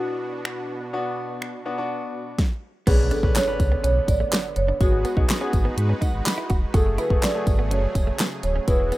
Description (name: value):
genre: dance-pop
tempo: 124 BPM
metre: 4/4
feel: straight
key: unclear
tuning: A4 = 438 Hz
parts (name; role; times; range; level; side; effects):
- marimba with medium mallets; melody; 0.0-9.0 s; F#4 to D5; -26 LUFS; right 2 dB; digital delay
- clear concert grand piano; accompaniment; 0.0-9.0 s; A3 to B5; -30 LUFS; left 2 dB; sidechain pumping
- soft supersaw; sustained chords; 0.0-9.0 s; B2 to B4; -34 LUFS; right 1 dB; sidechain pumping
- pop drum kit; drums; 0.5-9.0 s; crash cymbal, finger snaps, handclaps, hi-hat, kick drum, snare drum; -22 LUFS; equal; none
- direct-recorded clean electric guitar; riff; 2.9-9.0 s; A3 to F#4; -33 LUFS; right 4 dB; analog chorus
- sub bass with octave; bass; 2.9-8.9 s; D1 to G#2; -23 LUFS; equal; sidechain pumping
- tambourine; percussion; 2.9-9.0 s; none; -43 LUFS; left 3 dB; none
- impact; sound effects; 2.9-4.8 s; none; -33 LUFS; equal; none
room: little or no reverb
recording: rough home demo mix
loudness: -20 LUFS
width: side -17 dB against mid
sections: 0.0-2.9 A section; 2.9-9.0 B section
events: impact 2.9-4.8; grand piano fill 5.8-6.7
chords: 0.0 Bm; 2.9 Bmadd9; 4.8 G#m7; 6.7 F#madd9